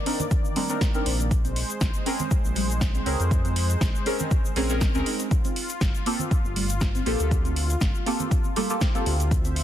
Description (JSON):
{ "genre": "deep house", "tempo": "120 BPM", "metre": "4/4", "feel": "swing 54% on 16ths", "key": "unclear", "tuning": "A4 = 440 Hz", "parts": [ { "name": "warm analog pad", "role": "sustained chords", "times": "0.0-9.6 s", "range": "Eb3 to E5", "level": "-34 LUFS", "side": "left 1 dB", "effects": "chorus, tremolo, sidechain pumping" }, { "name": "deep mellow chord stab", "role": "stabs", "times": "0.0-9.3 s", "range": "Bb3 to Bb4", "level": "-29 LUFS", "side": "equal", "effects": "chorus, phaser, cassette tape, sidechain pumping, tape echo" }, { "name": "soft round pluck", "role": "arpeggios", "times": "0.1-9.5 s", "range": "G3 to C5", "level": "-34 LUFS", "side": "right 2 dB", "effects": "wide subtle chorus, sidechain pumping, ping-pong delay" }, { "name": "deep house drum kit", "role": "drums", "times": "0.1-9.6 s", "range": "hi-hat, snare drum", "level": "-32 LUFS", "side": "equal", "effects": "overdrive, small room ambience" }, { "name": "congas", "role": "percussion", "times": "0.2-8.7 s", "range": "none", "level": "-36 LUFS", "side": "right 4 dB", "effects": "none" }, { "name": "egg shaker", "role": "percussion", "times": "0.2-9.5 s", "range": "none", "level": "-38 LUFS", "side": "left 6 dB", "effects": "none" }, { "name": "electronic kick drum", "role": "drums", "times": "0.3-9.4 s", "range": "none", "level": "-24 LUFS", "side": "equal", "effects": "overdrive, small room ambience" }, { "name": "round analog bass", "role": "bass", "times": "1.1-9.6 s", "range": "G1 to F2", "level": "-26 LUFS", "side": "equal", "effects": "sidechain pumping" } ], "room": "little or no reverb", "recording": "dense, heavily limited modern master", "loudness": "-22 LUFS", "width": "side -11 dB against mid", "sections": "0.0-9.6 A section", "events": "none", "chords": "0.0 Cm9; 1.3 Bbm9; 5.3 Gm9", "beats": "0.31 0.81 | 1.31 1.81 2.31 2.81 | 3.31 3.81 4.31 4.81 | 5.31 5.81 6.31 6.81 | 7.31 7.81 8.31 8.81 | 9.31" }